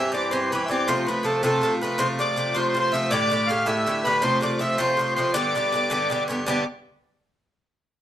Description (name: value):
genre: celtic folk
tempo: 107 BPM (dotted quarters)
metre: 6/8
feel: straight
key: G mixolydian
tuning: A4 = 440 Hz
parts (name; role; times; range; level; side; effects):
- accordion; melody; 0.0-6.6 s; A4 to F5; -23 LUFS; equal; none
- Irish bouzouki; accompaniment; 0.0-6.6 s; G2 to G4; -24 LUFS; equal; none
room: moderate large studio reverb, RT60 0.8 s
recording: band playing live in one room, lossy compression artefacts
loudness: -20 LUFS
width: side -11 dB against mid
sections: 0.0-6.5 A section; 6.5-7.6 B section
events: none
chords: 0.0 C; 0.9 F; 3.1 Gsus2; 4.2 F; 5.3 G